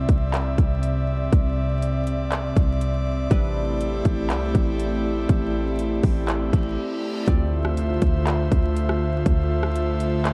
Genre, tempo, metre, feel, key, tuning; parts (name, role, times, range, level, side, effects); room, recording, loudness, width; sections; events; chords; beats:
hip hop, atmospheric cloud-rap; 121 BPM; 4/4; half-time; A4 = 441 Hz
airy breathy pad; sustained chords; 0.0-10.3 s; C3 to E5; -27 LUFS; equal; chorus, sidechain pumping
warm 808-style bass; bass; 0.0-10.3 s; A1 to D2; -28 LUFS; equal
qanun; texture; 0.0-10.3 s; G3 to D5; -40 LUFS; equal
trap drum kit; drums; 0.1-10.3 s; handclaps, hi-hat, kick drum, rim click; -24 LUFS; equal
reverse cymbal and impact; sound effects; 6.5-9.3 s; -43 LUFS; equal
light reverb; dark, warm production, vinyl crackle; -23 LUFS; mono
0.0-7.3 A section; 7.3-10.3 B section
reverse cymbal 6.5-7.3; break 6.8-7.3; impact 7.3-9.3
0.0 Cmaj7; 3.3 Am11; 7.3 Dm7
0.33 0.83 | 1.32 1.82 2.32 2.81 | 3.31 3.81 4.30 4.80 | 5.29 5.79 6.28 6.78 | 7.28 7.77 8.27 8.76 | 9.26 9.76 10.25